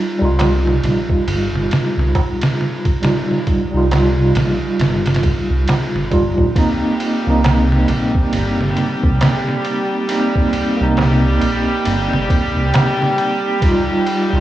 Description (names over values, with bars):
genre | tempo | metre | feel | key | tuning
trip hop | 68 BPM | 4/4 | swing 60% on 16ths | C minor | A4 = 440 Hz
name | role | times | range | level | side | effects
mellow tine electric piano | accompaniment | 0.0-14.4 s | G3 to F4 | -18 LUFS | right 1 dB | slow stereo tremolo, tape echo
dark detuned saw bass | bass | 0.2-14.4 s | G1 to C2 | -17 LUFS | equal | none
trip hop sampler-style drum kit | drums | 0.4-14.3 s | kick drum, ride cymbal, snare drum | -19 LUFS | equal | overdrive
darbuka | percussion | 0.4-13.0 s | none | -27 LUFS | right 3 dB | none
rich studio string section | sustained chords | 6.6-14.4 s | G3 to G4 | -21 LUFS | equal | none
room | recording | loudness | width
light reverb | worn, warbling old tape, cassette tape, warbly pitch drift, small room ambience | -14 LUFS | side -14 dB against mid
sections
0.0-6.6 A section; 6.6-14.4 B section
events
none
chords
0.0 Ebadd9; 6.6 Cm7; 13.6 Ebadd9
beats
0.38 1.27 2.15 | 3.03 3.91 4.79 5.68 | 6.56 7.44 8.32 9.21 | 10.09 10.97 11.85 12.74 | 13.62